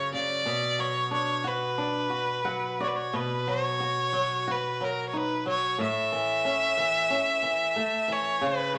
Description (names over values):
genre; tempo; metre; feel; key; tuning
fado; 91 BPM; 4/4; rubato; B minor; A4 = 440 Hz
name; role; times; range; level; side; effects
clear fiddle; melody; 0.0-8.8 s; A#4 to E5; -29 LUFS; equal; none
flamenco guitar; accompaniment; 0.0-8.8 s; F#2 to F#5; -33 LUFS; equal; none
room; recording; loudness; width
wet large studio reverb, RT60 0.8 s; none; -28 LUFS; mono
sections
0.0-3.1 A section; 3.1-8.8 B section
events
nylon-string guitar fill 2.1-3.1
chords
0.4 Bm; 3.1 Bsus2; 5.8 A